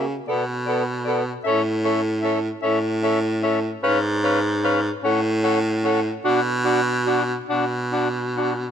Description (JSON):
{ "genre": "classical, lyrical piece for single-reed quartet", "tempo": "44-52 BPM (dotted quarters)", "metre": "6/8", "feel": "rubato", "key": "unclear", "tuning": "A4 = 440 Hz", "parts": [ { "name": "warm clarinet", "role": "melody", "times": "0.0-8.5 s", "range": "D5 to F#5", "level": "-28 LUFS", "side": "left 8 dB", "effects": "none" }, { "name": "warm alto saxophone", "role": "second line", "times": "0.0-8.5 s", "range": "F#4 to B4", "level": "-27 LUFS", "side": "right 8 dB", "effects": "none" }, { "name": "warm tenor saxophone", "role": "accompaniment", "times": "0.0-8.5 s", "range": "B3 to D4", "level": "-26 LUFS", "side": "left 4 dB", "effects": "none" }, { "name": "bright baritone saxophone", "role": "bass", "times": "0.0-8.7 s", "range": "G#2 to C#3", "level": "-22 LUFS", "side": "right 1 dB", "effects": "none" } ], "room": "light reverb", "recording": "vinyl crackle", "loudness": "-19 LUFS", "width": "side -8 dB against mid", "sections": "0.0-8.7 A section", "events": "none", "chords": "0.3 Bm7; 1.5 A; 3.8 C#7/G#; 5.0 F#m/A; 6.3 Bm", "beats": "0.29 | 1.45 2.63 | 3.84 5.04 | 6.25 7.50" }